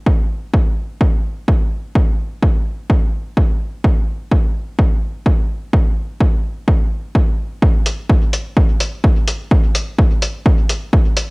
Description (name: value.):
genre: techno.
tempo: 127 BPM.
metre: 4/4.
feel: swing 54% on 16ths.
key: none.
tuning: none.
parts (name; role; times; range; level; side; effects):
electronic kick drum; drums; 0.1-11.0 s; none; -14 LUFS; equal; overdrive, cassette tape.
electronic hi-hat; drums; 7.9-11.3 s; none; -20 LUFS; left 1 dB; cassette tape.
room: little or no reverb.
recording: home recording on cassette.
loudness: -14 LUFS.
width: side -30 dB against mid.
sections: 0.0-7.6 A section; 7.6-11.3 B section.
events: none.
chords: none.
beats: | 0.06 0.54 1.01 1.48 | 1.95 2.42 2.90 3.37 | 3.84 4.32 4.79 5.26 | 5.73 6.21 6.68 7.15 | 7.62 8.10 8.57 9.04 | 9.51 9.98 10.46 10.93.